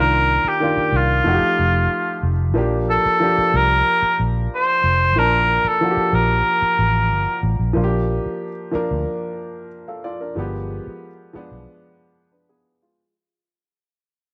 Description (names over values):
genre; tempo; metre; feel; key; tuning
lush 1970s-style soul; 92 BPM; 4/4; straight; Bb major; A4 = 440 Hz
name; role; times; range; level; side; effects
mellow cor anglais; melody; 0.0-7.4 s; F4 to C5; -20 LUFS; equal; none
warm baby grand piano; accompaniment; 0.0-13.1 s; Eb3 to A5; -26 LUFS; equal; none
vintage muted fingered electric bass; bass; 0.0-11.7 s; F1 to D2; -23 LUFS; equal; none
room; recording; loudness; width
light reverb, small room ambience; nothing above 10.9 kHz; -19 LUFS; mono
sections
0.0-7.8 A section; 7.8-13.0 B section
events
fade-out 7.8-13.0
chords
0.0 Cm11; 1.3 F9; 2.6 Bb6; 10.4 G7b9